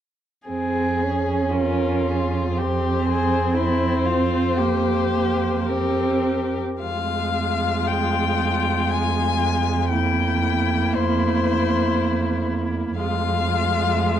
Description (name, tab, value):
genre	classical, slow romantic movement for string quartet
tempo	50-61 BPM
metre	3/4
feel	rubato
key	F minor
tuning	A4 = 440 Hz
part	rich violin	melody	0.5-14.2 s	Ab4 to Ab5	-25 LUFS	left 9 dB	none
part	warm violin	second line	0.5-14.2 s	E4 to Ab4	-26 LUFS	left 2 dB	none
part	rich viola	accompaniment	0.5-14.2 s	Ab3 to Db4	-24 LUFS	right 3 dB	none
part	warm cello	bass	0.5-14.2 s	F2	-25 LUFS	right 3 dB	none
room	moderate large studio reverb, RT60 1.5 s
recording	dark, warm production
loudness	-19 LUFS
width	side -10 dB against mid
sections	0.5-6.8 A section; 6.8-14.2 B section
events	none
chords	0.5 Fm; 3.6 C7(no3)/F; 6.8 Fm; 9.9 C7/F; 13.0 Fm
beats	| 0.49 1.54 2.58 | 3.58 4.59 5.68 | 6.83 7.89 8.93 | 9.94 10.97 11.98 | 12.99 13.99